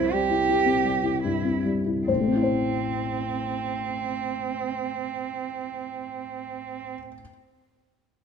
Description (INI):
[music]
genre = neoclassical piano and strings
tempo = 71 BPM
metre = 3/4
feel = rubato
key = A minor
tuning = A4 = 440 Hz
[part]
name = rich cello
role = second line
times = 0.0-6.9 s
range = C4 to G4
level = -28 LUFS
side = right 8 dB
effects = none
[part]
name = felt-muted upright piano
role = accompaniment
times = 0.0-7.3 s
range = A1 to C5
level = -25 LUFS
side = left 3 dB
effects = none
[sound]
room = wet recital hall reverb, RT60 1.6 s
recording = none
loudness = -24 LUFS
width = side -6 dB against mid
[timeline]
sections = 0.0-2.1 A section; 2.1-7.2 B section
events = slowing down 0.0-2.1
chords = 0.0 C; 2.1 Am